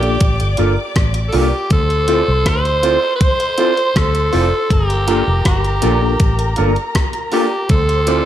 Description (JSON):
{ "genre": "lovers rock reggae", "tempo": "80 BPM", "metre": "4/4", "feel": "straight", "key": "G dorian", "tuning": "A4 = 440 Hz", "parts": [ { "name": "raspy alto saxophone", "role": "melody", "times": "0.0-8.3 s", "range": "G4 to C5", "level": "-19 LUFS", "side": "right 1 dB", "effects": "tape echo" }, { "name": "dark studio violin section", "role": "second line", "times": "0.0-8.3 s", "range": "Bb4 to D6", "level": "-24 LUFS", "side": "equal", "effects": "none" }, { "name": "mellow tine electric piano", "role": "accompaniment", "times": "0.0-8.2 s", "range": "Bb3 to A4", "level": "-21 LUFS", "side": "left 4 dB", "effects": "medium stereo tremolo" }, { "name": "electric guitar through a small old amp", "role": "stabs", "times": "0.0-8.2 s", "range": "F4 to D5", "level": "-22 LUFS", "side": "right 6 dB", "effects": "none" }, { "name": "vintage muted fingered electric bass", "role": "bass", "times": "0.0-8.2 s", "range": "F1 to D2", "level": "-18 LUFS", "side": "equal", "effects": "none" }, { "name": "gated 80s digital drum machine", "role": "drums", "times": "0.0-8.2 s", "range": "hi-hat, kick drum, rim click", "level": "-18 LUFS", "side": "equal", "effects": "overdrive" } ], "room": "moderate spring reverb, RT60 2.1 s", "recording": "none", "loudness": "-13 LUFS", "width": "side -11 dB against mid", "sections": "0.0-8.3 A section", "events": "none", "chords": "0.0 Gm7; 1.7 Dm7; 4.7 Gm7; 7.7 Dm7" }